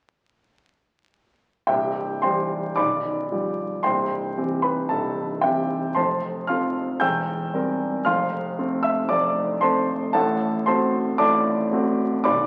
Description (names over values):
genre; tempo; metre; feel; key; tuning
classical, virtuoso piano study; 114 BPM; 4/4; rubato; C major; A4 = 441 Hz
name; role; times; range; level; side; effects
clear baby grand piano; solo; 1.7-12.5 s; B0 to G6; -23 LUFS; equal; none
room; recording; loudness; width
wet recital hall reverb, RT60 1.7 s; very old 78 rpm record, vinyl crackle; -23 LUFS; mono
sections
1.7-12.5 A section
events
none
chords
1.7 C; 2.8 G7/B; 3.8 C; 6.0 F; 7.0 C7/E; 8.1 F; 10.2 D7/A